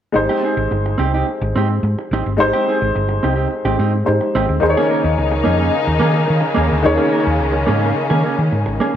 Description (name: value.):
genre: disco.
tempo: 108 BPM.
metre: 4/4.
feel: straight.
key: Ab major.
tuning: A4 = 443 Hz.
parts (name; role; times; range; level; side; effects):
dark baby grand piano; accompaniment; 0.1-9.0 s; Eb3 to Db5; -20 LUFS; left 1 dB; none.
mellow electric guitar; accompaniment; 0.2-9.0 s; Bb3 to Bb4; -21 LUFS; right 4 dB; none.
hollow-body short-scale fingered electric bass; bass; 0.2-8.8 s; G1 to Eb3; -18 LUFS; equal; none.
dark studio string section; sustained chords; 4.6-9.0 s; Db3 to Eb4; -19 LUFS; left 2 dB; none.
room: moderate echo chamber reverb, RT60 1.3 s, small room ambience.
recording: none.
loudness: -14 LUFS.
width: side -10 dB against mid.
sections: 0.1-9.0 A section.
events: none.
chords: 0.1 Abmaj7; 4.6 Eb7sus4.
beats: | 0.14 0.70 1.26 1.82 | 2.38 2.93 3.49 4.05 | 4.61 5.17 5.72 6.28 | 6.84 7.40 7.96 8.52.